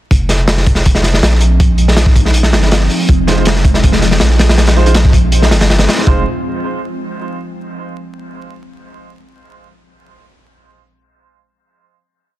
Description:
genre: drum and bass, jungle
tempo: 161 BPM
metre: 4/4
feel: straight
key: F minor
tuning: A4 = 440 Hz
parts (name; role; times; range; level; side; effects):
- ethereal airy pad; sustained chords; 0.9-6.2 s; F3 to F4; -20 LUFS; equal; ensemble chorus, built-in reverb, phaser
- saturated sub bass; bass; 0.1-6.2 s; F1 to Bb1; -12 LUFS; equal; none
- crunchy breakbeat drum kit; drums; 0.1-6.1 s; hi-hat, kick drum, snare drum; -11 LUFS; equal; none
- warm baby grand piano; stabs; 3.3-6.2 s; Ab3 to C5; -21 LUFS; right 4 dB; dub echo
room: small room ambience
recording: dense, heavily limited modern master, vinyl crackle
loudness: -9 LUFS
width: side -15 dB against mid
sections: 0.1-6.1 drop; 6.1-7.6 final chord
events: drop 0.1-6.1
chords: 0.1 Fm7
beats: | 0.11 0.48 0.85 1.22 | 1.60 1.97 2.34 2.71 | 3.09 3.46 3.83 4.21 | 4.58 4.95 5.32 5.70 | 6.07

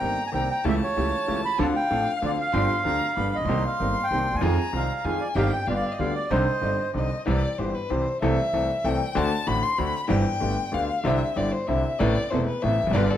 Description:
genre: tango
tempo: 191 BPM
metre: 3/4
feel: rubato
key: C minor, C major from 7.3 s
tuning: A4 = 440 Hz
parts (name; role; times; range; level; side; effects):
- bandoneon; melody; 0.0-6.9 s; C5 to B5; -27 LUFS; right 2 dB; tape echo
- warm violin; second line; 0.0-13.2 s; A4 to C6; -29 LUFS; left 3 dB; none
- bright grand piano; accompaniment; 0.0-13.1 s; E1 to A4; -27 LUFS; left 2 dB; none
- warm studio string section; stabs; 0.0-7.1, 11.1-13.1 s; A3 to C5; -34 LUFS; right 2 dB; none
- upright bass; bass; 0.0-13.1 s; E1 to F2; -28 LUFS; right 2 dB; none
room: moderate large studio reverb, RT60 0.9 s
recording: none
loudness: -22 LUFS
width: side -11 dB against mid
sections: 0.0-7.3 A section; 7.3-13.2 B section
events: violin solo 7.3-13.2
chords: 0.0 Cm7; 0.7 A7/C#; 1.6 Dm7; 2.5 G7sus4; 3.2 G7; 3.5 Cm7; 4.4 Fm7; 5.4 Cm/G; 5.7 G7; 6.3 Cmadd9; 7.3 C; 8.2 Am/C; 9.2 D7; 10.1 C/G; 10.4 Gadd9; 11.1 Cadd9; 12.0 Amadd9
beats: 0.02 0.34 | 0.65 0.96 1.28 | 1.59 1.90 2.22 | 2.53 2.85 3.16 | 3.48 3.80 4.11 | 4.43 4.74 5.05 | 5.36 5.67 5.99 | 6.30 6.62 6.95 | 7.27 7.59 7.90 | 8.22 8.54 8.85 | 9.16 9.48 9.79 | 10.10 10.41 10.73 | 11.05 11.37 11.69 | 12.01 12.32 12.63 | 12.95

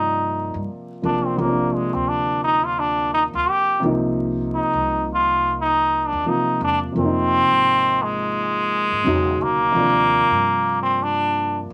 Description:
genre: hip hop, jazz-hop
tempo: 86 BPM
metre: 4/4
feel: swing 59% on 16ths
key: F dorian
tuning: A4 = 443 Hz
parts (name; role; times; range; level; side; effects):
- trombone with metal mute; melody; 0.0-11.6 s; Ab3 to G4; -21 LUFS; equal; none
- dark baby grand piano; accompaniment; 0.0-11.7 s; B2 to D5; -26 LUFS; equal; none
- upright bass; bass; 0.0-11.7 s; E1 to G2; -34 LUFS; equal; none
room: moderate studio reverb, RT60 0.6 s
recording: vinyl crackle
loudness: -20 LUFS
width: mono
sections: 0.0-7.0 A section; 7.0-11.7 B section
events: trombone solo 0.0-7.0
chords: 0.0 Ebmaj9; 1.4 Bbadd9; 3.8 Cm7; 7.0 Fm7; 9.1 Emaj9; 9.8 Ebmaj9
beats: 0.69 | 1.38 2.08 2.78 3.48 | 4.17 4.87 5.57 6.27 | 6.96 7.66 8.36 9.06 | 9.76 10.45 11.15

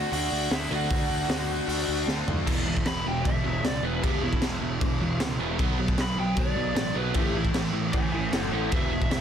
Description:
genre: punk rock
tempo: 154 BPM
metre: 4/4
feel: straight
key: unclear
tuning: A4 = 442 Hz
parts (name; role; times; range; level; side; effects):
- lead guitar through a small cranked amp; melody; 0.0-9.2 s; E4 to B5; -31 LUFS; equal; overdrive
- distorted electric guitar; riff; 0.0-9.2 s; E2 to D4; -33 LUFS; equal; overdrive
- fuzz picked electric bass; bass; 0.0-9.2 s; E1 to D2; -32 LUFS; equal; overdrive
- raw garage drum kit; drums; 0.1-9.2 s; crash cymbal, hi-hat, kick drum, snare drum, toms; -28 LUFS; equal; none
- overdriven electric guitar; riff; 0.7-9.2 s; E2 to D4; -30 LUFS; right 1 dB; none
room: little or no reverb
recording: dense, heavily limited modern master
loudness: -24 LUFS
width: side -8 dB against mid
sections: 0.0-2.5 A section; 2.5-9.2 B section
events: drum fill 2.1-2.5; lead electric guitar solo 2.5-9.2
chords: 0.0 D; 2.5 E5; 5.6 B5; 7.2 A5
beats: 0.12 0.51 | 0.90 1.29 1.69 2.08 | 2.47 2.86 3.25 3.64 | 4.03 4.42 4.81 5.20 | 5.59 5.98 6.37 6.76 | 7.16 7.55 7.94 8.33 | 8.72 9.11

